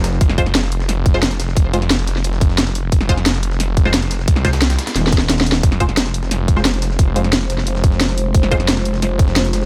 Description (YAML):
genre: dark technical drum and bass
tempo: 177 BPM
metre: 4/4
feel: straight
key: F minor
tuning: A4 = 443 Hz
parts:
  - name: growling FM bass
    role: bass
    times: 0.0-0.2, 5.0-5.6 s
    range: Eb1 to F1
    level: -20 LUFS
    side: equal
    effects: none
  - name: breakbeat sampler-style drum kit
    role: drums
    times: 0.0-9.7 s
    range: hi-hat, snare drum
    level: -32 LUFS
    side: equal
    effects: high-pass filter on snare, high-pass filter on hats
  - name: drum and bass drum kit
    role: drums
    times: 0.0-9.6 s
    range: hi-hat, snare drum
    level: -21 LUFS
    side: equal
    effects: none
  - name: snarling distorted saw bass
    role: bass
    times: 0.2-9.7 s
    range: F1 to C2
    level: -21 LUFS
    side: equal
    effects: distortion, tube saturation
  - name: electronic kick drum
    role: drums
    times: 0.2-9.3 s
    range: none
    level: -16 LUFS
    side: equal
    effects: none
  - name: filtered dub chord stab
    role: stabs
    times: 0.4-8.6 s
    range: Ab3 to C5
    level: -27 LUFS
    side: equal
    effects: phaser, digital delay
  - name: dark analog pad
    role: sustained chords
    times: 5.6-9.7 s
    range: Ab3 to C5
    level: -27 LUFS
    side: equal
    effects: chorus, sidechain pumping
room: digital ambience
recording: none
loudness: -16 LUFS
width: mono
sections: 0.0-9.7 A section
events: drum fill 5.0-5.6; kick drops out 5.3-5.6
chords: 0.0 Fm